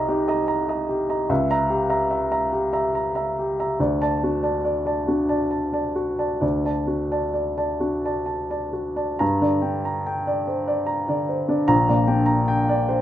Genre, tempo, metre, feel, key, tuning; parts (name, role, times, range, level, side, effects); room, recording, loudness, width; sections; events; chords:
classical, romantic character piece for solo piano; 63-78 BPM; 3/4; rubato; G minor; A4 = 440 Hz
warm upright piano; solo; 0.0-13.0 s; Bb1 to Bb5; -20 LUFS; equal
moderate recital hall reverb, RT60 1.4 s; close, detailed microphones; -20 LUFS; side -12 dB against mid
0.0-9.2 A section; 9.2-13.0 B section
0.0 Cm7; 1.3 C#dim7; 3.8 D; 9.2 Gm; 11.7 Gm/Bb